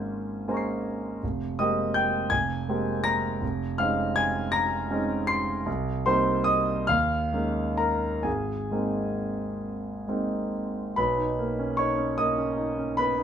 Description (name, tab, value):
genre	classical, impressionist solo piano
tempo	42-55 BPM (dotted quarters)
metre	6/8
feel	rubato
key	Ab major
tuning	A4 = 439 Hz
part	clear concert grand piano	solo	0.0-13.2 s	F1 to C7	-24 LUFS	equal	none
room	light reverb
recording	minimal, uncompressed stereo recording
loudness	-24 LUFS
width	side -8 dB against mid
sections	0.0-11.0 A section; 11.0-13.2 B section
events	none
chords	0.0 Bbm9/Ab; 1.2 Fm11; 2.3 Abmaj9/F; 3.4 Dbmaj9/F; 5.7 Cm7; 6.9 Eb9sus4; 8.3 Abadd9; 11.0 Bmaj9